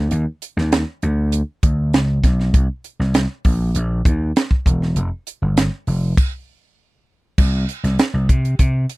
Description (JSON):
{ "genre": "polished 1980s jazz-funk pop", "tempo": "99 BPM", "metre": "4/4", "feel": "straight", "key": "unclear", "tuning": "A4 = 440 Hz", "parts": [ { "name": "vintage slap bass", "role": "bass", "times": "0.0-8.8 s", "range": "E1 to C3", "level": "-18 LUFS", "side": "equal", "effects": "none" }, { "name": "tight funk drum kit", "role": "drums", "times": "0.1-9.0 s", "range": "crash cymbal, hi-hat, kick drum, snare drum", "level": "-17 LUFS", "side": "equal", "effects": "none" } ], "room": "little or no reverb", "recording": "dry, close 1970s-style studio recording", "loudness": "-16 LUFS", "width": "side -22 dB against mid", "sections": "0.0-7.4 A section; 7.4-9.0 B section", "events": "stop 6.2-7.4", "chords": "none", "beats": "| 0.11 0.72 1.32 1.93 | 2.54 3.14 3.75 4.36 | 4.96 5.57 6.17 6.78 | 7.38 7.99 8.59" }